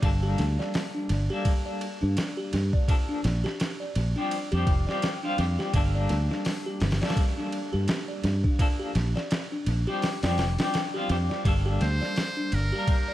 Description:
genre	trip hop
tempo	84 BPM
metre	4/4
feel	swing 58% on 16ths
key	G minor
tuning	A4 = 438 Hz
part	clean electric guitar	accompaniment	0.0-13.1 s	F3 to Bb4	-32 LUFS	left 2 dB	tremolo, tape echo
part	fingered electric bass	bass	0.0-12.7 s	F1 to G2	-25 LUFS	equal	none
part	boom bap sampler-style drum kit	drums	0.0-13.1 s	hi-hat, kick drum, ride cymbal, snare drum	-28 LUFS	equal	dub echo
part	music box	arpeggios	0.2-13.1 s	D4 to D5	-34 LUFS	equal	tape echo
part	trumpet with metal mute	melody	11.8-13.1 s	Bb4 to C5	-31 LUFS	right 1 dB	tape echo
room	little or no reverb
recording	echo-heavy mix, vinyl crackle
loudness	-24 LUFS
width	side -14 dB against mid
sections	0.0-13.1 A section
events	none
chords	0.0 Gmadd9; 2.9 Bbmaj7; 4.3 Fsus2; 5.7 Gmadd9; 8.6 Bbmaj7; 10.0 Fsus2; 11.5 Gmadd9

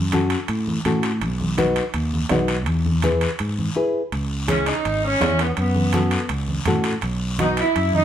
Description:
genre	latin, cumbia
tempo	165 BPM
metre	4/4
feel	straight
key	unclear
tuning	A4 = 440 Hz
part	fingered electric bass	bass	0.0-8.0 s	G#1 to A2	-23 LUFS	equal	none
part	nylon-string guitar	accompaniment	0.1-7.7 s	B3 to B4	-23 LUFS	left 2 dB	none
part	congas	percussion	0.1-8.0 s	none	-26 LUFS	right 1 dB	none
part	guiro	percussion	0.1-8.0 s	none	-32 LUFS	left 4 dB	none
part	timbales	percussion	0.1-7.9 s	none	-30 LUFS	right 6 dB	none
part	dark saxophone section	melody	4.5-8.0 s	B3 to E4	-21 LUFS	right 2 dB	none
room	moderate studio reverb, RT60 0.9 s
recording	band playing live in one room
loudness	-19 LUFS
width	side -10 dB against mid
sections	0.0-4.1 A section; 4.1-8.0 B section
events	none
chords	0.0 F#m; 1.2 B; 2.7 E; 4.1 C#m; 5.6 F#m; 7.0 B

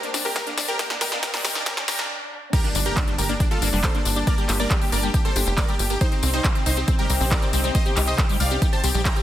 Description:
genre	uplifting trance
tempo	138 BPM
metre	4/4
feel	straight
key	G minor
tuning	A4 = 443 Hz
part	supersaw chords	melody	0.0-9.2 s	C4 to Bb5	-27 LUFS	right 1 dB	sidechain pumping, dub echo
part	wide unison pluck	second line	0.0-9.2 s	C4 to Bb5	-36 LUFS	right 1 dB	none
part	dark studio string section	sustained chords	0.0-9.2 s	C3 to G4	-32 LUFS	left 1 dB	sidechain pumping
part	liquid acid bass	arpeggios	0.0-9.2 s	G3 to G4	-32 LUFS	left 3 dB	phaser, ensemble chorus, sidechain pumping, dub echo
part	big-room dance drum kit	drums	0.0-9.2 s	crash cymbal, handclaps, hi-hat, snare drum, tambourine	-26 LUFS	left 2 dB	overdrive, high-pass filter on snare, high-pass filter on hats, high-pass filter on perc, high-pass filter on cymbals
part	riser and impact	sound effects	0.0-4.3 s	none	-36 LUFS	right 1 dB	none
part	tight sequencer bass	bass	0.1-9.1 s	F1 to C2	-25 LUFS	equal	sidechain pumping, high-pass filter
part	electronic kick drum	drums	0.4-9.1 s	none	-22 LUFS	equal	overdrive, high-pass filter on kick, high-pass filter on room
room	light reverb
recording	dense, heavily limited modern master, high-pass filter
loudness	-19 LUFS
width	side -12 dB against mid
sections	0.0-2.5 A section; 2.5-9.2 B section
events	build-up 0.0-2.5; drum fill 0.0-2.1; riser 0.0-2.1; stop 2.1-2.5; drop 2.5-9.2; impact 2.5-4.3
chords	0.0 Gm; 0.8 Eb/G; 2.5 Gm; 6.0 Cm

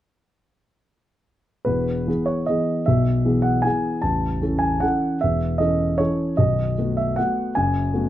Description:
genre	classical, piano waltz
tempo	153 BPM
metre	3/4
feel	uneven beats, rubato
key	E major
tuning	A4 = 440 Hz
part	warm concert grand piano	solo	1.6-8.1 s	A0 to A5	-19 LUFS	equal	none
room	light reverb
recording	dark, warm production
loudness	-19 LUFS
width	side -13 dB against mid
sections	1.7-8.1 A section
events	none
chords	1.7 E; 4.0 A; 6.4 B7

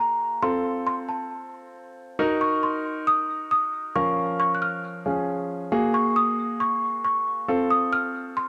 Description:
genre	pop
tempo	136 BPM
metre	4/4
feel	straight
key	Bb minor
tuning	A4 = 440 Hz
part	worn celesta	melody	0.0-8.5 s	A5 to Gb6	-26 LUFS	equal	tape echo
part	clear concert grand piano	accompaniment	0.0-8.5 s	F3 to Bb4	-29 LUFS	equal	none
room	moderate plate reverb, RT60 3.0 s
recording	dark, warm production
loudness	-24 LUFS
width	mono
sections	0.0-8.5 A section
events	none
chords	0.4 F; 2.2 Ebm; 4.0 Bbm/F; 5.7 Gbadd9; 7.5 F

